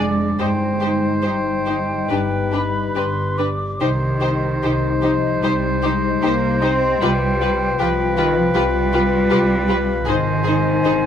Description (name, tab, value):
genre	classical, slow romantic movement for symphony orchestra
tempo	69-80 BPM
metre	4/4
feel	rubato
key	C minor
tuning	A4 = 441 Hz
part	rich symphonic violin section	melody	0.0-10.9 s	B4 to C5	-28 LUFS	left 3 dB	none
part	clear oboe	second line	0.0-11.1 s	B4 to D5	-25 LUFS	right 1 dB	none
part	dark clarinet	second line	0.0-11.1 s	D4 to G4	-30 LUFS	left 1 dB	none
part	hollow concert flute	second line	0.0-11.1 s	G5 to D6	-28 LUFS	left 1 dB	none
part	warm studio violin section	second line	0.0-10.9 s	G4 to Ab4	-29 LUFS	left 4 dB	none
part	warm symphonic viola section	accompaniment	0.0-10.9 s	D4 to F4	-26 LUFS	right 1 dB	none
part	mellow French horn section	sustained chords	0.0-11.1 s	D4 to C5	-24 LUFS	left 6 dB	none
part	concert harp	arpeggios	0.0-11.1 s	F2 to F5	-26 LUFS	left 8 dB	none
part	rich chamber cello section	bass	0.0-11.1 s	Eb3 to C4	-23 LUFS	right 3 dB	none
part	warm symphonic double bass section	bass	0.0-11.1 s	F1 to C2	-25 LUFS	right 3 dB	none
room	light reverb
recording	close, detailed microphones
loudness	-16 LUFS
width	side -8 dB against mid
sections	0.0-11.1 A section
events	none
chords	0.4 Cm/G; 2.1 G; 3.8 Cm; 7.0 G7/C; 10.1 Ab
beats	| 0.40 1.25 2.11 2.97 | 3.81 4.63 5.43 6.23 | 7.01 7.79 8.55 9.31 | 10.08 10.86